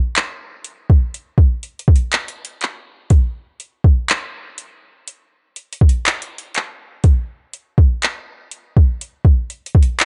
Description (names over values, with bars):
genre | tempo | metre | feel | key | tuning
R&B | 61 BPM | 4/4 | straight | none | none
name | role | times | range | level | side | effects
smooth R&B drum kit | drums | 0.2-10.1 s | handclaps, hi-hat, kick drum | -16 LUFS | equal | none
room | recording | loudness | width
digital ambience | dark, warm production, nothing above 10.6 kHz | -17 LUFS | mono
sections
0.0-10.1 A section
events
none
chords
none